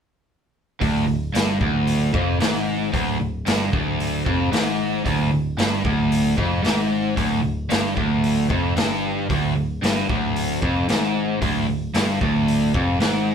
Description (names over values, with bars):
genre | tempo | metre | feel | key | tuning
blues rock power trio and southern rock | 113 BPM | 4/4 | straight | unclear | A4 = 442 Hz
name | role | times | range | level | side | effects
cranked stack guitar | riff | 0.8-13.3 s | D2 to Ab2 | -20 LUFS | equal | overdrive
picked electric bass | bass | 0.8-13.3 s | D1 to Ab1 | -28 LUFS | equal | none
raw garage drum kit | drums | 0.8-13.1 s | hi-hat, kick drum, snare drum | -25 LUFS | equal | none
room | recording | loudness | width
wet studio reverb, RT60 0.5 s | band playing live in one room | -19 LUFS | side -7 dB against mid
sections
0.8-13.3 A section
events
none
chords
0.8 Ddim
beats
| 0.81 1.34 1.87 2.40 | 2.94 3.47 4.00 4.53 | 5.06 5.59 6.12 6.65 | 7.18 7.71 8.24 8.77 | 9.30 9.83 10.36 10.89 | 11.42 11.95 12.48 13.01